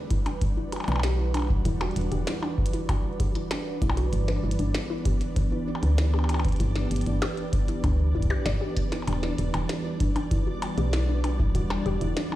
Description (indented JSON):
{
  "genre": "IDM",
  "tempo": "97 BPM",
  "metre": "4/4",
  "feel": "straight",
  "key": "E minor",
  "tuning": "A4 = 439 Hz",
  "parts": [
    { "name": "glassy FM pad", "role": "sustained chords", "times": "0.0-12.4 s", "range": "E3 to B4", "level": "-32 LUFS", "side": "right 1 dB", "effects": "ensemble chorus, built-in reverb, vintage 12-bit sampler grit" },
    { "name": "warbly dusty pluck", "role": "arpeggios", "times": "0.0-12.4 s", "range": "D4 to D5", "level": "-34 LUFS", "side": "left 3 dB", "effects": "chorus, dub echo" },
    { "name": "flickering grainy texture", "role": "texture", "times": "0.0-12.4 s", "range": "D4 to D5", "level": "-40 LUFS", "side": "right 1 dB", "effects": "built-in reverb" },
    { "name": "electronic kick drum", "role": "drums", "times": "0.1-11.5 s", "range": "none", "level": "-26 LUFS", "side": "equal", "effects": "none" },
    { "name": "glitchy drum kit", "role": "drums", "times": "0.1-12.4 s", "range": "hi-hat, percussion blips, snare drum", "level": "-34 LUFS", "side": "left 1 dB", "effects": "ping-pong delay" },
    { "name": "woody FM bass", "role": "bass", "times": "0.9-12.1 s", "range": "E1 to D2", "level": "-25 LUFS", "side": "equal", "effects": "none" }
  ],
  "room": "light reverb",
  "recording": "played on a big sound system in a bare room, stone room reverb",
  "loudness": "-24 LUFS",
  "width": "side -15 dB against mid",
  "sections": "0.0-12.4 A section",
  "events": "filter sweep on synth pluck 0.0-12.4",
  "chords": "0.0 Em9; 4.1 G6; 9.1 Em9",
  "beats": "0.41 1.03 | 1.65 2.27 2.89 3.51 | 4.13 4.75 5.36 5.98 | 6.60 7.22 7.84 8.46 | 9.07 9.69 10.31 10.93 | 11.55 12.17"
}